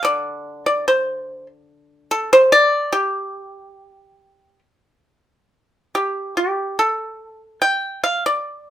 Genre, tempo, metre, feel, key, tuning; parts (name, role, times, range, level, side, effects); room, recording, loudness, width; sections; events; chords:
chinese traditional, Chinese solo plucked strings; 72 BPM; 2/4; rubato; G shang mode; A4 = 440 Hz
pipa; solo; 0.0-8.7 s; D3 to G5; -16 LUFS; equal
moderate studio ambience, RT60 0.5 s; band playing live in one room; -16 LUFS; side -11 dB against mid
0.0-5.1 A section; 5.1-8.7 B section